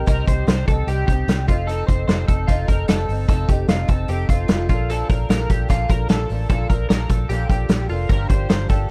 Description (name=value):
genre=jangly indie pop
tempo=150 BPM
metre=4/4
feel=straight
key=Bb major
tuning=A4 = 438 Hz
part: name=picked twelve-string acoustic guitar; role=accompaniment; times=0.0-8.9 s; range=G2 to A4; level=-32 LUFS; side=equal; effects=none
part: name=twelve-string electric guitar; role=arpeggios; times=0.0-8.9 s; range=F4 to C5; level=-30 LUFS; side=equal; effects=analog chorus
part: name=vintage muted fingered electric bass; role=bass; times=0.0-8.9 s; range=F1 to C2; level=-25 LUFS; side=equal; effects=none
part: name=loose indie drum kit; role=drums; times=0.1-8.8 s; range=hi-hat, kick drum, snare drum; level=-21 LUFS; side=equal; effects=none
room=little or no reverb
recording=none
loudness=-19 LUFS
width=mono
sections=0.0-8.9 A section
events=none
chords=0.0 Cm; 1.5 F7; 4.7 Bbmaj7; 8.1 Gm7